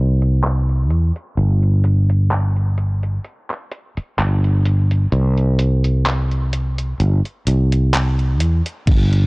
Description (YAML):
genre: vaporwave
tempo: 64 BPM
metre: 4/4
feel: swing 54% on 16ths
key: unclear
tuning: A4 = 440 Hz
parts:
  - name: sustaining fretless electric bass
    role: bass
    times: 0.0-9.3 s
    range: G1 to E2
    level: -15 LUFS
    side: equal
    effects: tube saturation
  - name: detuned 8-bit digital drum machine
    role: drums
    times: 0.2-9.3 s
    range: crash cymbal, handclaps, hi-hat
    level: -25 LUFS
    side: equal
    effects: low-pass filter on snare, low-pass filter on hats, low-pass filter on cymbals
  - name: electronic kick drum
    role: drums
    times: 8.9-9.1 s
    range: none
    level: -14 LUFS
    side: equal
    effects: none
room: digital ambience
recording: dry, gritty hardware recording, cassette tape, low-pass filter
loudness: -15 LUFS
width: side -31 dB against mid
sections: 0.0-8.9 A section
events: filter sweep on drum 0.0-8.9; filter sweep 0.0-8.9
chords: none